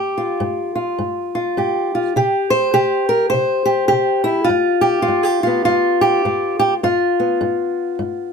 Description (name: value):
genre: acoustic country blues, solo or duo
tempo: 103 BPM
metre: 4/4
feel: swing 61% on 8ths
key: G mixolydian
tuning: A4 = 440 Hz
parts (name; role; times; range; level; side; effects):
- fingerpicked old ladder-braced acoustic guitar; solo; 0.0-8.3 s; G2 to C5; -15 LUFS; equal; none
room: light reverb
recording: close, detailed microphones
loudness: -15 LUFS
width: side -6 dB against mid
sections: 0.0-8.3 A section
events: none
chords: 0.0 G7(no3); 2.2 N.C.; 4.5 G7